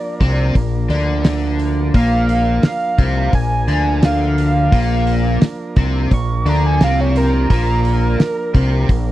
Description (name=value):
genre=psychedelic rock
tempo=86 BPM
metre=4/4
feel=straight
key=Bb major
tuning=A4 = 441 Hz
part: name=overdriven synth lead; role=melody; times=0.0-8.9 s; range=Bb4 to Db6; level=-22 LUFS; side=right 2 dB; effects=distortion, chorus, tape echo
part: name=combo organ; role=sustained chords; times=0.0-9.1 s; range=F3 to Bb4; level=-27 LUFS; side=right 3 dB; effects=none
part: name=crunchy overdriven guitar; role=riff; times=0.2-9.1 s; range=Bb2 to D4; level=-19 LUFS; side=left 1 dB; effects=flanger
part: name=growling fingered electric bass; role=bass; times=0.2-9.1 s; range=Bb1 to D2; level=-17 LUFS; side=equal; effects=overdrive
part: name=damped 70s drum kit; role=drums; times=0.2-9.1 s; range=hi-hat, kick drum, snare drum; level=-13 LUFS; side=equal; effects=none
room=little or no reverb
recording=dry, close 1970s-style studio recording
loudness=-13 LUFS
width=side -14 dB against mid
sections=0.0-9.1 A section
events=analog synth lead solo 0.0-9.1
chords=0.0 Bb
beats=0.55 1.25 | 1.94 2.64 3.33 4.03 | 4.72 5.42 6.11 6.81 | 7.50 8.20 8.89